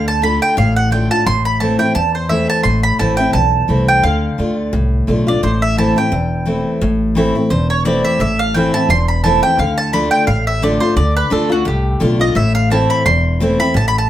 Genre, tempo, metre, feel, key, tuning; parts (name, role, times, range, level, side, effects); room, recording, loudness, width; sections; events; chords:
bluegrass; 173 BPM; 4/4; swing 55% on 8ths; A minor; A4 = 440 Hz
mandolin; melody; 0.0-14.1 s; F#4 to C6; -17 LUFS; right 2 dB
picked steel-string acoustic guitar; accompaniment; 0.0-14.1 s; E2 to F4; -16 LUFS; left 1 dB
upright bass; bass; 0.0-14.1 s; E1 to E2; -18 LUFS; equal
moderate studio ambience, RT60 0.5 s; -12 LUFS; side -12 dB against mid
0.0-6.8 A section; 6.8-14.1 B section
mandolin solo 6.8-14.1
0.0 Dm; 1.3 Am; 4.0 Dm; 5.4 Am; 9.6 Dm; 12.4 Am